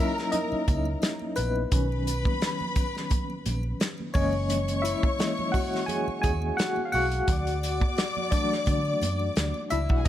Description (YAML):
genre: lush 1970s-style soul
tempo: 86 BPM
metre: 4/4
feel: swing 54% on 16ths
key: unclear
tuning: A4 = 440 Hz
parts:
  - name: warm studio string section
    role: second line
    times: 0.0-10.1 s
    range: D4 to D6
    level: -34 LUFS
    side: left 2 dB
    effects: none
  - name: mellow tine electric piano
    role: accompaniment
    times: 0.0-10.1 s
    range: D#3 to G#5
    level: -28 LUFS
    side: left 2 dB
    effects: medium tremolo
  - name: congas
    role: percussion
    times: 0.0-10.1 s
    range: none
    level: -40 LUFS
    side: right 6 dB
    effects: none
  - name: warm soul drum kit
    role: drums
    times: 0.2-10.1 s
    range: hi-hat, kick drum, snare drum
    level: -28 LUFS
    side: equal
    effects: none
  - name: triangle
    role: percussion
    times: 0.2-10.1 s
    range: none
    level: -48 LUFS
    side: left 6 dB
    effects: none
  - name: vintage muted fingered electric bass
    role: bass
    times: 0.5-10.1 s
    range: F#1 to D3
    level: -29 LUFS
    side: right 1 dB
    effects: none
room: little or no reverb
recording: none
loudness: -24 LUFS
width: side -12 dB against mid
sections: 0.0-10.1 A section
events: tine electric piano solo 0.0-10.1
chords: 0.0 D#m7; 1.7 B; 4.2 F#13; 7.3 D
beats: 0.33 1.02 | 1.72 2.42 3.11 3.81 | 4.50 5.20 5.89 6.58 | 7.28 7.97 8.67 9.37 | 10.06